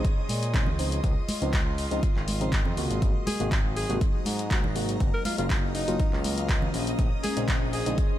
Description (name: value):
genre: deep house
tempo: 121 BPM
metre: 4/4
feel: swing 53% on 16ths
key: Bb minor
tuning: A4 = 440 Hz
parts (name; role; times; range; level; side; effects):
- percussive organ stab; stabs; 0.0-8.0 s; C3 to Gb4; -33 LUFS; equal; analog chorus, sidechain pumping, digital delay
- electronic kick drum; drums; 0.0-8.1 s; none; -26 LUFS; equal; none
- punchy analog drum machine; drums; 0.0-8.1 s; handclaps, hi-hat; -34 LUFS; left 1 dB; none
- airy breathy pad; texture; 0.0-8.2 s; Gb3 to C6; -38 LUFS; left 1 dB; chorus, sidechain pumping
- string machine, violins; texture; 0.0-8.2 s; Eb5 to Eb6; -41 LUFS; left 1 dB; ensemble chorus, sidechain pumping
- smooth synth bass; bass; 0.3-8.0 s; Gb1 to Bb2; -31 LUFS; equal; sidechain pumping
- congas; percussion; 0.3-7.3 s; none; -35 LUFS; right 2 dB; none
- deep dark ambient pad; sustained chords; 4.0-8.2 s; Bb3 to Db5; -36 LUFS; left 2 dB; chorus, built-in reverb, sidechain pumping
- breathy alto saxophone; melody; 3.3-7.9 s; Eb4 to Bb4; -34 LUFS; left 1 dB; ping-pong delay
room: digital ambience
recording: none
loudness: -24 LUFS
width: side -13 dB against mid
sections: 0.0-8.2 A section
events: none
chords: 0.0 Bbm11; 0.8 Dbmaj9; 3.0 Ab9; 5.0 Gbmaj7; 6.7 Bbm11